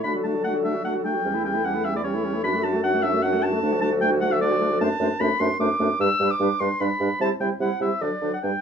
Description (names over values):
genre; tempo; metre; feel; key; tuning
quick classical-period movement for wind quintet; 150 BPM; 3/4; straight; D major; A4 = 443 Hz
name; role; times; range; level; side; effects
concert flute; melody; 0.0-8.5 s; F#4 to C5; -30 LUFS; left 12 dB; none
clear oboe; second line; 0.0-8.6 s; C#5 to E6; -25 LUFS; left 1 dB; none
clear clarinet; accompaniment; 0.0-8.5 s; C#4 to F#4; -30 LUFS; right 8 dB; none
dark French horn; accompaniment; 0.0-8.5 s; F#3 to A3; -29 LUFS; equal; none
mellow bassoon; bass; 0.0-8.5 s; D2 to D3; -26 LUFS; right 2 dB; none
room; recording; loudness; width
moderate studio ambience, RT60 0.5 s; none; -20 LUFS; side -7 dB against mid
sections
0.0-8.6 A section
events
none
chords
0.0 D; 1.3 A7/E; 2.4 D/F#; 3.6 D; 4.8 D7/F#; 6.0 G; 7.2 C; 8.0 D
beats
| 0.04 0.44 0.85 | 1.25 1.65 2.04 | 2.44 2.83 3.23 | 3.62 4.01 4.41 | 4.81 5.20 5.60 | 6.00 6.40 6.80 | 7.21 7.61 8.02 | 8.44